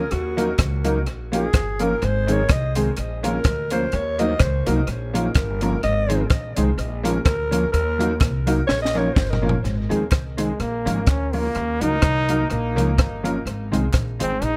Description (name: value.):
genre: ska.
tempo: 126 BPM.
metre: 4/4.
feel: swing 56% on 8ths.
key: Bb minor.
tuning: A4 = 440 Hz.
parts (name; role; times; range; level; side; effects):
breathy alto saxophone; melody; 0.0-9.6 s; Gb4 to Eb5; -29 LUFS; equal; tape echo, plate reverb.
mellow electric guitar; accompaniment; 0.0-14.3 s; Eb3 to Eb4; -30 LUFS; equal; ensemble chorus, tape echo.
upright bass; bass; 0.0-14.6 s; G1 to Eb2; -27 LUFS; equal; none.
compact cocktail drum kit; drums; 0.1-14.5 s; hi-hat, kick drum, rim click, snare drum, toms; -24 LUFS; equal; tape echo.
honky-tonk upright piano; stabs; 0.4-14.3 s; Ab3 to Bb4; -30 LUFS; equal; tape echo, plate reverb.
group handclap; percussion; 0.6-14.1 s; none; -39 LUFS; equal; none.
bright trombone; melody; 10.4-14.6 s; Ab3 to Eb4; -27 LUFS; equal; tape echo.
room: light reverb.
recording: none.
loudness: -21 LUFS.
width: mono.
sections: 0.0-9.6 A section; 9.6-14.6 B section.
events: alto saxophone solo 0.0-9.6; drum fill 8.7-9.6.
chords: 0.1 Ebm; 1.1 Bbm; 2.0 Ab; 3.0 Bbm; 3.9 Ebm; 4.9 Bbm; 5.8 Ab; 6.8 Bbm; 7.7 Ebm; 8.7 Bbm; 9.6 Ab; 10.6 Bbm; 11.5 Ebm; 12.5 Bbm; 13.5 Ab.